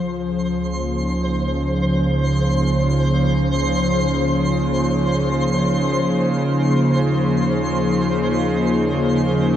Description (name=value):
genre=ambient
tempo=free time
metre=none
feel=none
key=unclear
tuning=A4 = 445 Hz
part: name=warm analog pad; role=sustained chords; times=0.0-9.6 s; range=F3 to C5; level=-20 LUFS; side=left 1 dB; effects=chorus
part: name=warm sub bass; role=bass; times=0.0-9.6 s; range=Db2 to Eb2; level=-28 LUFS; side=equal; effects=none
part: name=bowed-like drone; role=drone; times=0.4-9.6 s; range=Db3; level=-21 LUFS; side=right 2 dB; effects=built-in reverb
part: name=twinkling granular texture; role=texture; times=0.0-9.6 s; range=C5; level=-25 LUFS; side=left 1 dB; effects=built-in reverb
room=wet cathedral reverb, RT60 6.4 s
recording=in a vast, echoing space, nothing above 10.4 kHz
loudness=-17 LUFS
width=side -10 dB against mid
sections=0.0-9.6 A section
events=fade-out on sub bass 0.0-9.6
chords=0.0 Bbm7/Db; 6.3 Ebsus2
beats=free time